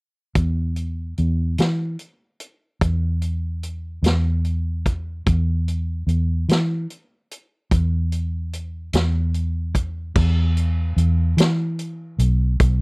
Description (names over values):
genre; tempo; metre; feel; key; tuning
slow blues; 49 BPM (dotted quarters); 12/8; straight; unclear; A4 = 440 Hz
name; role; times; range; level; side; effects
vintage muted fingered electric bass; bass; 0.4-12.8 s; B1 to E3; -20 LUFS; equal; none
vintage drum kit; drums; 0.4-12.8 s; crash cymbal, hi-hat, kick drum, snare drum; -21 LUFS; equal; none
room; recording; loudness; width
little or no reverb; dry, close 1970s-style studio recording; -19 LUFS; side -37 dB against mid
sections
0.3-10.1 A section; 10.1-12.8 B section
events
none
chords
none